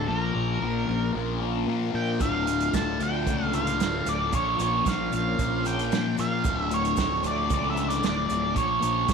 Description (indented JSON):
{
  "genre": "psychedelic rock",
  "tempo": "113 BPM",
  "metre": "4/4",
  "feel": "straight",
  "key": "D harmonic minor",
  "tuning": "A4 = 439 Hz",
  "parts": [
    { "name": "octave-fuzz lead guitar", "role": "melody", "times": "0.0-9.1 s", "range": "Bb4 to A5", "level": "-28 LUFS", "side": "right 3 dB", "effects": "distortion, tape echo" },
    { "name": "soft string machine", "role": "sustained chords", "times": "0.0-9.1 s", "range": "F3 to Bb4", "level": "-35 LUFS", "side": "right 14 dB", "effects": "ensemble chorus" },
    { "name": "thick fuzz guitar", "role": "riff", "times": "0.0-9.1 s", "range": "D2 to Bb3", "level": "-28 LUFS", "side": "left 11 dB", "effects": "distortion, phaser" },
    { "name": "fuzz fingered electric bass", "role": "bass", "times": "0.0-9.1 s", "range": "D1 to Bb2", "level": "-31 LUFS", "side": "right 1 dB", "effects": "overdrive" },
    { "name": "vintage drum kit", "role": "drums", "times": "2.2-9.1 s", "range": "hi-hat, kick drum, snare drum", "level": "-30 LUFS", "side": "right 4 dB", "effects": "none" },
    { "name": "egg shaker", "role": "percussion", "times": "2.2-9.1 s", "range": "none", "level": "-45 LUFS", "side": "left 16 dB", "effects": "none" }
  ],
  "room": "moderate echo chamber reverb, RT60 2.2 s",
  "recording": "1960s-style stereo with parts hard left and right",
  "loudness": "-23 LUFS",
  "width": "side -6 dB against mid",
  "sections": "0.0-9.1 A section",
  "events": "none",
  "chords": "0.1 Bbm; 2.2 Dm; 4.3 Bbm; 6.4 Dm; 8.6 Bbm"
}